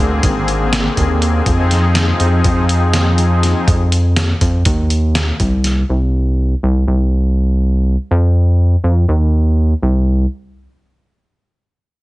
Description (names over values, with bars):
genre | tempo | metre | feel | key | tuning
progressive instrumental, band music in an uneven meter | 244 BPM (eighths) | 9/8 | straight | F dorian | A4 = 440 Hz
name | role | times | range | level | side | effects
warm analog pad | accompaniment | 0.0-3.6 s | D3 to Ab4 | -17 LUFS | left 2 dB | chorus, tremolo
rubbery square bass | bass | 0.0-10.3 s | Ab1 to F2 | -13 LUFS | equal | none
trip hop sampler-style drum kit | drums | 0.2-5.8 s | hi-hat, kick drum, snare drum | -18 LUFS | equal | none
room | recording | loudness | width
light reverb | heavily compressed radio sound, multiband compression, nothing above 10.7 kHz | -12 LUFS | side -19 dB against mid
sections
0.0-10.3 A section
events
none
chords
0.0 Bb7; 1.5 Fm7; 5.9 N.C.; 8.1 F5